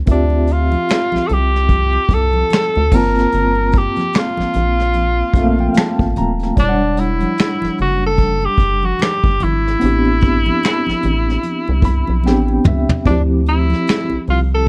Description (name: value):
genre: R&B, neo-soul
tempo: 74 BPM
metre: 4/4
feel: swing 59% on 16ths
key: unclear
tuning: A4 = 440 Hz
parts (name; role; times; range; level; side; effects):
- mellow tine electric piano; accompaniment; 0.0-14.7 s; F3 to B5; -22 LUFS; equal; medium tremolo
- rubbery square bass; bass; 0.0-14.7 s; Eb1 to D2; -20 LUFS; equal; none
- warm tenor saxophone; melody; 0.1-14.7 s; D4 to Bb4; -21 LUFS; equal; none
- vintage brush drum kit; drums; 0.1-14.5 s; crash cymbal, finger snaps, hi-hat, kick drum, snare drum, toms; -20 LUFS; equal; none
- congas; percussion; 0.1-14.5 s; none; -30 LUFS; equal; none
room: small room ambience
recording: dark, warm production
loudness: -16 LUFS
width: mono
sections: 0.1-14.7 A section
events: tine electric piano fill 4.9-6.6, 11.4-13.1; drum fill 12.2-13.1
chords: 0.1 Dm9; 2.9 Gm9; 6.6 Em9; 9.8 Am9; 13.1 Dm9